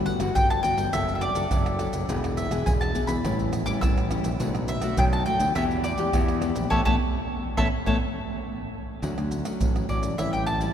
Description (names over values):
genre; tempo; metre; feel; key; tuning
samba and choro; 104 BPM; 4/4; straight; D major; A4 = 440 Hz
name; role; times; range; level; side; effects
nylon-string guitar; accompaniment; 0.0-10.7 s; F#2 to A4; -29 LUFS; left 3 dB; none
growling fingered electric bass; bass; 0.0-10.7 s; E1 to E2; -29 LUFS; equal; overdrive
mandolin; melody; 0.1-10.7 s; C#5 to E6; -28 LUFS; left 1 dB; none
pandeiro, maracas, tamborim and surdo; percussion; 0.1-10.7 s; none; -28 LUFS; right 1 dB; none
room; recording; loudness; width
wet cathedral reverb, RT60 5.7 s; recorded in a church or concert hall; -23 LUFS; side -9 dB against mid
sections
0.0-9.0 A section; 9.0-10.7 B section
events
band accent 6.7-9.0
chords
0.0 Gmaj7; 0.9 Dmaj7/F#; 2.1 E7; 3.2 A7; 4.4 Bm7; 5.6 Em7; 6.7 Aadd9; 9.0 Dmaj7; 10.2 A7